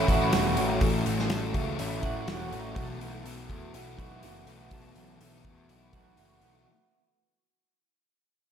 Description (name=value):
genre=rock, shoegaze and dream pop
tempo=123 BPM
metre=4/4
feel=straight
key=unclear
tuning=A4 = 441 Hz
part: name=fingerpicked twelve-string acoustic guitar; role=arpeggios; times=0.0-6.8 s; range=E4 to A4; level=-36 LUFS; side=right 2 dB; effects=analog chorus, analog delay
part: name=electric guitar through a small old amp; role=riff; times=0.0-6.7 s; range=A2 to F#4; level=-34 LUFS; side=right 8 dB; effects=reverse reverb
part: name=thick fuzz guitar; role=riff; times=0.0-6.7 s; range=A2 to F#4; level=-33 LUFS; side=left 8 dB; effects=distortion, analog chorus
part: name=fuzz picked electric bass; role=bass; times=0.0-6.6 s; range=E1 to E2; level=-35 LUFS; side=equal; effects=overdrive
part: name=loose indie drum kit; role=drums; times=0.1-6.5 s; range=hi-hat, kick drum, snare drum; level=-31 LUFS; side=equal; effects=none
room=moderate plate reverb, RT60 1.7 s, studio reverb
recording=dreamy mix soaked in reverb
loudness=-26 LUFS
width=side -8 dB against mid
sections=0.0-6.7 A section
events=fade-out 0.0-6.7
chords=0.0 A6; 2.8 B7sus4